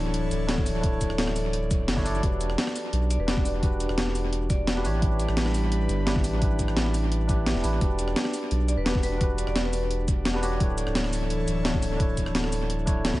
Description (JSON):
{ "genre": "liquid drum and bass", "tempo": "172 BPM", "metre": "4/4", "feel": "straight", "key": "E dorian", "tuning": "A4 = 441 Hz", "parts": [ { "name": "tine electric piano", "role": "accompaniment", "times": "0.0-13.2 s", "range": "D4 to D5", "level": "-31 LUFS", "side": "equal", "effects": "dub echo" }, { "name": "airy breathy pad", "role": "sustained chords", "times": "0.0-13.2 s", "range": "E3 to C#5", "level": "-35 LUFS", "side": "left 1 dB", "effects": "chorus, sidechain pumping" }, { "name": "saturated sub bass", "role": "bass", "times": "0.0-13.2 s", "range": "D1 to D2", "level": "-27 LUFS", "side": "equal", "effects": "none" }, { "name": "breakbeat sampler-style drum kit", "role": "drums", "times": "0.1-13.2 s", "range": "cabasa, hi-hat, rim click, snare drum", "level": "-30 LUFS", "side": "equal", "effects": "dub echo" }, { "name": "electronic kick drum", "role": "drums", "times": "0.6-13.2 s", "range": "none", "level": "-26 LUFS", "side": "equal", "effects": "overdrive" }, { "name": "vibraphone with medium mallets", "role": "melody", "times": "3.1-4.8, 8.7-10.0 s", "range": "B4 to D5", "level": "-37 LUFS", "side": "equal", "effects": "vintage 12-bit sampler grit, dub echo" } ], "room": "moderate spring reverb, RT60 1.8 s", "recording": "echo-heavy mix, nothing above 10.5 kHz", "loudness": "-23 LUFS", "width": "side -17 dB against mid", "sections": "0.0-13.2 A section", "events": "none", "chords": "0.0 Dmaj9; 2.2 Em9; 4.8 A9sus4; 7.8 Em9; 10.6 Aadd11/D" }